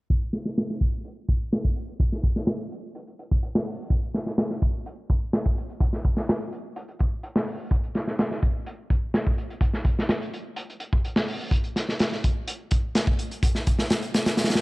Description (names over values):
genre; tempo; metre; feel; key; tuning
breakbeat; 126 BPM; 4/4; straight; none; none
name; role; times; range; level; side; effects
crunchy breakbeat drum kit; drums; 0.1-14.6 s; hi-hat, kick drum, snare drum; -23 LUFS; equal; none
room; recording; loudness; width
light reverb; dry, gritty hardware recording, low-pass filter; -23 LUFS; side -22 dB against mid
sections
0.1-14.6 A section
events
filter sweep 0.1-14.6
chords
none